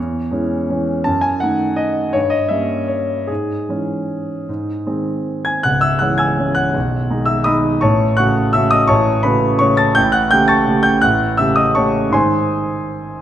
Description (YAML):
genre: classical, piano waltz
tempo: 146-175 BPM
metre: 3/4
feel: rubato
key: C# minor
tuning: A4 = 440 Hz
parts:
  - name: clear concert grand piano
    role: solo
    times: 0.0-13.2 s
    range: B0 to A6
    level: -14 LUFS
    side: equal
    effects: none
room: moderate scoring stage reverb, RT60 1.6 s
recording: none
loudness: -14 LUFS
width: side -11 dB against mid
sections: 0.0-5.7 A section; 5.7-13.2 B section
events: none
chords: 0.0 C#m/E; 1.1 D#dim/F#; 2.1 Gdim7; 3.3 C#m/G#; 4.5 G#; 5.7 C#m; 6.7 G#m/B; 7.8 F#m/A; 10.0 A7; 12.1 G#